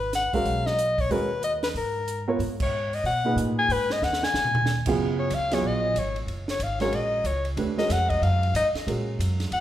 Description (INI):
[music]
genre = modal jazz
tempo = 185 BPM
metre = 4/4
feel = swing 62% on 8ths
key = G# dorian, Eb minor from 5.0 s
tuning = A4 = 436 Hz
[part]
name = mellow soprano saxophone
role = melody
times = 0.0-9.6 s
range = A#4 to G#5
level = -26 LUFS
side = left 2 dB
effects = none
[part]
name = upright bass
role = bass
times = 0.0-9.6 s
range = Gb1 to B2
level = -29 LUFS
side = equal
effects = none
[part]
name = compact cocktail drum kit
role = drums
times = 0.1-9.6 s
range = crash cymbal, hi-hat, kick drum, ride cymbal, snare drum, toms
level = -32 LUFS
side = right 2 dB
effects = none
[part]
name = warm upright piano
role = accompaniment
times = 0.3-9.6 s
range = A#2 to C#5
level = -28 LUFS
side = right 3 dB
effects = none
[sound]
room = moderate recital hall reverb, RT60 1.3 s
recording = recorded in a church or concert hall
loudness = -23 LUFS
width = side -12 dB against mid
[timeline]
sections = 0.0-5.0 A section; 5.0-9.6 B section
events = band accent 2.6; drum fill 4.0-4.7; soprano saxophone solo 5.0-9.6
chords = 0.0 G#m9; 5.0 Ebm9